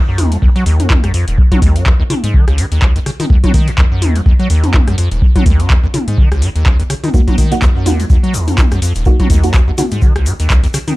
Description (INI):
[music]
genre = acid house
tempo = 125 BPM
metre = 4/4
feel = swing 57% on 16ths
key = unclear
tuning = A4 = 441 Hz
[part]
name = liquid acid bass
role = riff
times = 0.1-10.9 s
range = Eb1 to Gb3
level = -14 LUFS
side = equal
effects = chorus, overdrive, sidechain pumping, digital delay
[part]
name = electro analog drum machine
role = drums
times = 0.2-11.0 s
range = handclaps, hi-hat, rim click, toms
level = -19 LUFS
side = left 1 dB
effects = none
[part]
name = electronic kick drum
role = drums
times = 0.4-10.6 s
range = none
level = -11 LUFS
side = equal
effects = none
[part]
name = deep mellow chord stab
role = stabs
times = 7.1-9.9 s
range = Bb3 to Gb4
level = -20 LUFS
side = right 2 dB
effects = chorus, digital delay
[part]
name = tube shaker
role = percussion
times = 7.1-11.0 s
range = none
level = -30 LUFS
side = left 4 dB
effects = none
[sound]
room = light reverb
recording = dark, warm production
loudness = -10 LUFS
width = side -19 dB against mid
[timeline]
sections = 0.0-11.0 A section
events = none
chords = 0.0 Ebm